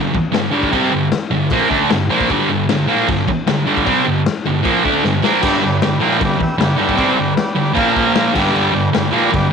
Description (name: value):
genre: garage rock duo or trio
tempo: 154 BPM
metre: 4/4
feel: straight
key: unclear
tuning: A4 = 435 Hz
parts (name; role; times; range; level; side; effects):
- thick fuzz guitar; riff; 0.0-9.5 s; G2 to D4; -14 LUFS; right 1 dB; distortion
- raw garage drum kit; drums; 0.1-9.4 s; crash cymbal, kick drum, snare drum; -21 LUFS; left 4 dB; none
- overdriven combo organ; sustained chords; 5.4-9.5 s; F4 to F5; -21 LUFS; equal; none
room: moderate spring reverb, RT60 2.4 s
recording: 1960s-style stereo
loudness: -13 LUFS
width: side -6 dB against mid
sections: 0.0-9.5 A section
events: drum fill 5.0-5.4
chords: 0.0 G; 7.8 Bb5; 8.3 G